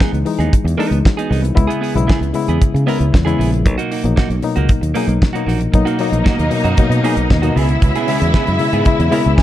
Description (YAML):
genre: disco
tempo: 115 BPM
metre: 4/4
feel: straight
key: unclear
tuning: A4 = 440 Hz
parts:
  - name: clean electric guitar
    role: accompaniment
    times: 0.0-9.4 s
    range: A#3 to A#4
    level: -23 LUFS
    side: right 8 dB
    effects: none
  - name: reed electric piano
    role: accompaniment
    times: 0.0-9.4 s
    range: B2 to G#4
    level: -19 LUFS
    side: left 5 dB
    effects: none
  - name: damped 70s drum kit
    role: drums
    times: 0.0-9.4 s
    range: hi-hat, kick drum, snare drum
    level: -16 LUFS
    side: equal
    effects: none
  - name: fingered electric bass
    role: bass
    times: 0.1-9.3 s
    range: A#1 to C#3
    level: -17 LUFS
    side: equal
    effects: none
  - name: dark studio string section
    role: second line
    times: 5.7-9.4 s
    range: D#4 to G#5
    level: -22 LUFS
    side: right 1 dB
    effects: none
  - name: clear studio string section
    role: sustained chords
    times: 5.7-9.4 s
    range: B2 to E4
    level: -23 LUFS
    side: right 1 dB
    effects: none
room: studio reverb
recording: dark, warm production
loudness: -13 LUFS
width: side -13 dB against mid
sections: 0.0-5.7 A section; 5.7-9.4 B section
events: none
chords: 0.0 Emaj7; 1.6 C#m7; 3.7 Bmaj7; 7.6 C#m7